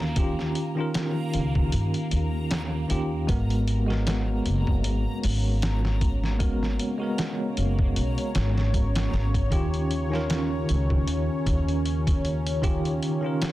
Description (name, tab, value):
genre	trip hop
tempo	77 BPM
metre	4/4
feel	swing 56% on 16ths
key	G# dorian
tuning	A4 = 439 Hz
part	bell-like tine electric piano	accompaniment	0.0-13.5 s	D#3 to A#4	-28 LUFS	equal	fast stereo tremolo, tape echo
part	upright bass	bass	0.0-13.0 s	F#1 to G2	-26 LUFS	equal	none
part	trip hop sampler-style drum kit	drums	0.0-13.5 s	hi-hat, kick drum, snare drum	-28 LUFS	equal	none
part	backwards swelling texture	texture	0.0-13.5 s	A#3 to A#5	-39 LUFS	equal	built-in reverb
part	dark analog pad	sustained chords	4.0-13.5 s	C#4 to C#5	-33 LUFS	equal	chorus
room	light reverb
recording	dense, heavily limited modern master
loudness	-23 LUFS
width	side -16 dB against mid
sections	0.0-13.5 A section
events	none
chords	0.0 D#9; 3.3 G#m9; 9.5 D#9